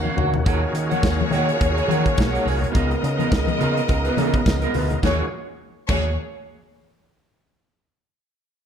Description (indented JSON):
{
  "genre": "disco",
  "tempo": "105 BPM",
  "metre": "4/4",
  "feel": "swing 56% on 16ths",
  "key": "Eb minor",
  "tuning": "A4 = 442 Hz",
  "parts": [
    { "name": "clear studio string section", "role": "second line", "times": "0.0-6.2 s", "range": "Bb3 to Gb5", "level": "-26 LUFS", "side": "left 1 dB", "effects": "none" },
    { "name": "electric guitar at the edge of break-up", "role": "accompaniment", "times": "0.0-6.1 s", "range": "Cb4 to Ab5", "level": "-27 LUFS", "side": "right 4 dB", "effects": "lush chorus" },
    { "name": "overdriven tonewheel organ", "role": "sustained chords", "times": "0.0-5.3 s", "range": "Db3 to Bb4", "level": "-28 LUFS", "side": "right 1 dB", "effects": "fast rotary speaker" },
    { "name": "picked electric bass with an envelope filter", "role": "bass", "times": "0.0-6.2 s", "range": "Cb2 to Eb3", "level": "-24 LUFS", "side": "equal", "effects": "none" },
    { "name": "congas", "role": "percussion", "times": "0.1-6.2 s", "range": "none", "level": "-30 LUFS", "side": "left 9 dB", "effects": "none" },
    { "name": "modern studio drum kit", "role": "drums", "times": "0.2-6.0 s", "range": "crash cymbal, hi-hat, kick drum, snare drum, toms", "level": "-24 LUFS", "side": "equal", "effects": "none" },
    { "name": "tambourine", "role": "percussion", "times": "1.0-6.2 s", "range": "none", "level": "-42 LUFS", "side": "left 4 dB", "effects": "none" }
  ],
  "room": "light reverb",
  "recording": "dark, warm production",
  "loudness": "-18 LUFS",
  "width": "side -8 dB against mid",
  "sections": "0.5-5.0 A section; 5.0-7.3 B section",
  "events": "drum fill 0.0-0.5",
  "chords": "0.5 Ebm11; 2.7 Db13; 5.0 Ebm11"
}